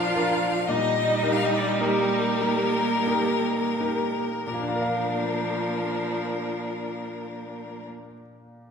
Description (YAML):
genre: classical, slow romantic movement for piano quintet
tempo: 39-58 BPM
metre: 3/4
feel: rubato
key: Bb major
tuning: A4 = 441 Hz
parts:
  - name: rich violin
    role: melody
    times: 0.0-7.8 s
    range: Bb4 to F5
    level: -29 LUFS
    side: left 6 dB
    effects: none
  - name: rich cello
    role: second line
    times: 0.0-7.8 s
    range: Bb3 to F4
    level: -30 LUFS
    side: right 4 dB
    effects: none
  - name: rich violin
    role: second line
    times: 0.0-7.9 s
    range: D4 to Eb4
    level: -34 LUFS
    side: left 2 dB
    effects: none
  - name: bright baby grand piano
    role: accompaniment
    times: 0.0-8.7 s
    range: Bb2 to F5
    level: -29 LUFS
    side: left 1 dB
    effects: none
  - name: clear viola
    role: accompaniment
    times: 0.0-7.9 s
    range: F3 to G3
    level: -30 LUFS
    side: right 3 dB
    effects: none
room: wet recital hall reverb, RT60 1.5 s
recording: heard from further back in the room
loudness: -23 LUFS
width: side -6 dB against mid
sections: 0.0-4.5 A section; 4.5-8.2 B section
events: slowing down 0.0-4.5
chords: 0.0 Bb; 0.7 Eb/Bb; 4.5 Bb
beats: | 0.69 1.81 3.06 | 4.47 5.68 6.93